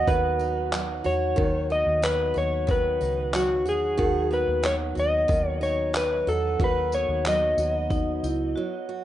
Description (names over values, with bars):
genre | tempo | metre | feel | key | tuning
acoustic pop | 92 BPM | 4/4 | straight | unclear | A4 = 436 Hz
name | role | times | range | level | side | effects
electric slide guitar | melody | 0.0-8.9 s | F#4 to D#5 | -25 LUFS | left 2 dB | digital delay
picked steel-string acoustic guitar | accompaniment | 0.0-9.0 s | D#3 to F#4 | -29 LUFS | right 5 dB | none
vintage muted fingered electric bass | bass | 0.0-8.5 s | C#2 to E2 | -30 LUFS | equal | none
dusty soul sampler-style drum kit | drums | 0.1-8.4 s | handclaps, kick drum, tambourine | -28 LUFS | equal | none
tambourine | percussion | 0.1-8.4 s | none | -48 LUFS | left 7 dB | none
vibraphone with hard mallets | second line | 7.9-9.0 s | D#4 to F#4 | -30 LUFS | equal | none
room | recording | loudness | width
small room ambience | rough home demo mix, nothing above 10.8 kHz | -22 LUFS | side -12 dB against mid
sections
0.0-9.0 A section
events
break 8.6-9.0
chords
0.0 B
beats
0.08 0.73 | 1.38 2.03 2.69 3.34 | 3.99 4.64 5.29 5.95 | 6.60 7.25 7.91 8.56